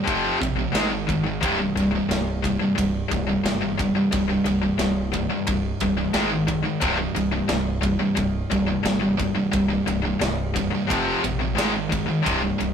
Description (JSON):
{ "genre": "heavy metal", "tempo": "89 BPM", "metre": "4/4", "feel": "straight", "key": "C minor", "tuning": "A4 = 441 Hz", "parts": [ { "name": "high-gain distorted guitar", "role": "riff", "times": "0.0-12.7 s", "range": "C2 to Ab3", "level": "-25 LUFS", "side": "right 5 dB", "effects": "distortion" }, { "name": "tight distorted guitar", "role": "riff", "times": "0.0-12.7 s", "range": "C2 to Ab3", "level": "-24 LUFS", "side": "left 5 dB", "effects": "distortion" }, { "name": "growling fingered electric bass", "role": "bass", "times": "0.1-12.7 s", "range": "C1 to Bb1", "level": "-30 LUFS", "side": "equal", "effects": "overdrive" }, { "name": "tight metal drum kit", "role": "drums", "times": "0.1-12.7 s", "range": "kick drum, ride cymbal, snare drum", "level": "-29 LUFS", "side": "right 1 dB", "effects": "none" } ], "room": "moderate small room reverb, RT60 0.5 s", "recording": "rough rehearsal-room recording, tube saturation", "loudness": "-20 LUFS", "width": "side -7 dB against mid", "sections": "0.0-12.7 A section", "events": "none", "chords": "0.1 F5; 0.7 Ab5; 1.4 C5; 6.1 Ab5; 6.8 C5; 10.9 F5; 11.6 Ab5" }